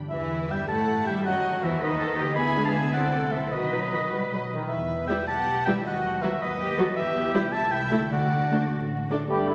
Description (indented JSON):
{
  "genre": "classical, dramatic, fast romantic movement for symphony orchestra",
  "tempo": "105 BPM (dotted quarters)",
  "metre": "6/8",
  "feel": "straight",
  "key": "E minor",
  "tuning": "A4 = 440 Hz",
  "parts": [
    { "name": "concert harp", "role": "arpeggios", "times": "0.0-9.5 s", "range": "G2 to B4", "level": "-36 LUFS", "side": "equal", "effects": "none" },
    { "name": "warm symphonic violin section", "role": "melody", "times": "0.1-9.5 s", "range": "D#4 to D#5", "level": "-41 LUFS", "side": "equal", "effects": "none" },
    { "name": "clear oboe", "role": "second line", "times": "0.1-9.5 s", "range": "D5 to B5", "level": "-31 LUFS", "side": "equal", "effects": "none" },
    { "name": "rich symphonic violin section", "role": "second line", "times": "0.1-9.5 s", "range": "B3 to G#5", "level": "-39 LUFS", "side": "equal", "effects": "none" },
    { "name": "warm symphonic viola section", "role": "accompaniment", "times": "0.1-9.5 s", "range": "D#3 to F#4", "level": "-31 LUFS", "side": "equal", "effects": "none" },
    { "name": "clear symphonic double bass section", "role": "bass", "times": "0.1-9.5 s", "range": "G1 to A2", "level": "-39 LUFS", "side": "equal", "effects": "none" },
    { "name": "rich symphonic cello section", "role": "bass", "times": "0.7-9.5 s", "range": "G2 to B4", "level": "-36 LUFS", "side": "equal", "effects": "none" },
    { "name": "timpani", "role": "percussion", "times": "8.1-8.7 s", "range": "D3", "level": "-33 LUFS", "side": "equal", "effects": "none" },
    { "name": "flute section", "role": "second line", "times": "9.3-9.5 s", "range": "B5", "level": "-39 LUFS", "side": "equal", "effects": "none" },
    { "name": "mellow clarinet", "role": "second line", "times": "9.3-9.5 s", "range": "D4", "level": "-50 LUFS", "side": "equal", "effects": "none" },
    { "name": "mellow bassoon", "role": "accompaniment", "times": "9.3-9.5 s", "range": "A3", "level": "-30 LUFS", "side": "equal", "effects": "none" },
    { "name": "mellow French horn section", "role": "sustained chords", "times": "9.3-9.5 s", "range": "G3 to D4", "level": "-32 LUFS", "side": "equal", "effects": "none" },
    { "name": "clear trumpet section", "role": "stabs", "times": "9.3-9.5 s", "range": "E4 to G4", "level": "-28 LUFS", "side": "equal", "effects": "none" }
  ],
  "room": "wet scoring stage reverb, RT60 1.6 s",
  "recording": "vinyl crackle",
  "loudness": "-26 LUFS",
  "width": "mono",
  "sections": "0.1-9.3 A section",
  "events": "none",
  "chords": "0.1 Em; 1.2 B; 2.4 E7/D; 2.9 Am/C; 3.5 B; 5.8 B/D#; 7.0 Em; 7.5 Am7/C; 8.1 D",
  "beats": "| 0.10 0.68 | 1.25 1.81 | 2.37 2.94 | 3.53 4.12 | 4.70 5.28 | 5.85 6.41 | 6.97 7.54 | 8.12 8.72 | 9.30"
}